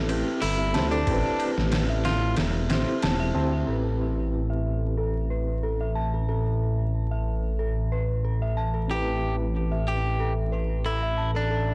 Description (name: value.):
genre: trip hop.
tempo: 92 BPM.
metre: 4/4.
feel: straight.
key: unclear.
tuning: A4 = 441 Hz.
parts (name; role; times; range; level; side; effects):
reed electric piano; accompaniment; 0.0-11.7 s; C4 to C5; -34 LUFS; equal; fast tremolo, tape echo.
dark detuned synth bell; arpeggios; 0.0-11.7 s; A4 to A5; -36 LUFS; equal; chorus, phaser, low-pass filter, delay.
dark detuned saw bass; bass; 0.0-11.7 s; E1 to D2; -28 LUFS; equal; none.
flickering grainy texture; texture; 0.2-3.7 s; none; barely audible; none; none.
trip hop sampler-style drum kit; drums; 0.1-3.2 s; hi-hat, kick drum, ride cymbal, snare drum; -31 LUFS; equal; overdrive, studio reverb.
direct-recorded clean electric guitar; melody; 0.4-2.3, 8.9-11.7 s; D4 to G4; -33 LUFS; equal; tape echo.
room: little or no reverb.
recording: blown-out, overdriven recording, vinyl crackle, overdrive.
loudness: -26 LUFS.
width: mono.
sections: 0.0-3.7 A section; 3.7-11.7 B section.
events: kick drops out 2.4-3.7.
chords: 0.0 Am7.